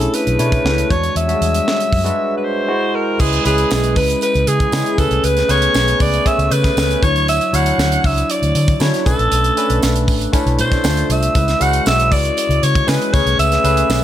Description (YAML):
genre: polished 1980s jazz-funk pop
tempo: 118 BPM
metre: 4/4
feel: straight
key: unclear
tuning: A4 = 438 Hz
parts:
  - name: growling alto saxophone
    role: melody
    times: 0.0-14.0 s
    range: G#4 to F#5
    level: -18 LUFS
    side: equal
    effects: none
  - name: barky tine electric piano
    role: accompaniment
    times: 0.0-14.0 s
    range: F#3 to G#5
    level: -20 LUFS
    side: left 1 dB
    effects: overdrive, lush chorus
  - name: vintage muted fingered electric bass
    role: bass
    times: 0.0-14.0 s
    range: A1 to D3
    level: -18 LUFS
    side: equal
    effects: none
  - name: tight funk drum kit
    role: drums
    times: 0.0-14.0 s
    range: crash cymbal, hi-hat, kick drum, snare drum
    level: -20 LUFS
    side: right 1 dB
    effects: none
  - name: tambourine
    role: percussion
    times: 3.2-14.0 s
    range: none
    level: -32 LUFS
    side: right 11 dB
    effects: none
room: light reverb, studio reverb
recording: none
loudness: -13 LUFS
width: side -11 dB against mid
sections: 0.0-3.2 A section; 3.2-14.0 B section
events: tine electric piano fill 2.2-3.2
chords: 0.0 Bm11; 0.9 E13; 2.7 G#7b13; 3.2 C#m7; 5.0 Amaj9; 7.0 Dmaj9; 9.1 Bm9; 10.8 Dm7; 11.4 C#m7; 13.1 Amaj9